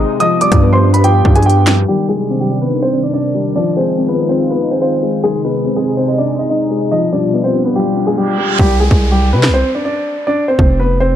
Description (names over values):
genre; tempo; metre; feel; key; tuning
hip hop, drill; 143 BPM; 4/4; half-time; C harmonic minor; A4 = 439 Hz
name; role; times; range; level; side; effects
dark concert grand piano; melody; 0.0-11.2 s; G3 to Eb6; -15 LUFS; equal; tape echo
dark concert grand piano; accompaniment; 0.0-8.6 s; Eb3 to Eb5; -18 LUFS; left 5 dB; none
sweeping resonant pad; sustained chords; 0.0-8.6 s; B2 to G4; -20 LUFS; right 2 dB; chorus
distorted 808-style bass; bass; 0.0-1.9, 8.6-11.2 s; F1 to C3; -12 LUFS; equal; distortion
drill drum kit; drums; 0.2-1.8, 8.6-10.7 s; handclaps, hi-hat, kick drum, rim click, snare drum; -14 LUFS; equal; none
reverse cymbal and downlifter; sound effects; 8.2-11.2 s; none; -24 LUFS; right 4 dB; none
room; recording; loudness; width
light reverb, digital ambience; low-pass filter; -11 LUFS; side -10 dB against mid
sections
0.0-1.9 A section; 1.9-8.6 B section; 8.6-11.2 C section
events
filter sweep 1.9-8.6; reverse cymbal 8.2-8.6; hi-hats muted 8.6-11.2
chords
0.2 G7; 1.9 Cmadd9; 3.6 Fm7; 5.2 Ab; 6.9 G7; 8.6 Csus2; 10.3 F5